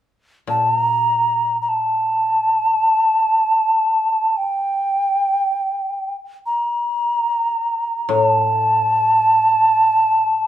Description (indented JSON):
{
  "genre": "japanese traditional, Japanese chamber music",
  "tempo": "free time",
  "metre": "none",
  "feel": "none",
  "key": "unclear",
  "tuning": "A4 = 441 Hz",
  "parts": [
    { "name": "mellow alto ocarina", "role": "melody", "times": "0.5-10.5 s", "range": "G5 to Bb5", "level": "-16 LUFS", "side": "equal", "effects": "none" },
    { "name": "koto", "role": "accompaniment", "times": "0.5-10.5 s", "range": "A2 to Bb2", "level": "-24 LUFS", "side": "left 4 dB", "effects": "none" }
  ],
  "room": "moderate recital hall reverb, RT60 1.5 s",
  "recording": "minimal, uncompressed stereo recording",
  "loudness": "-15 LUFS",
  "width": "side -12 dB against mid",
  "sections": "0.0-10.5 A section",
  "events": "none",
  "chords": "none"
}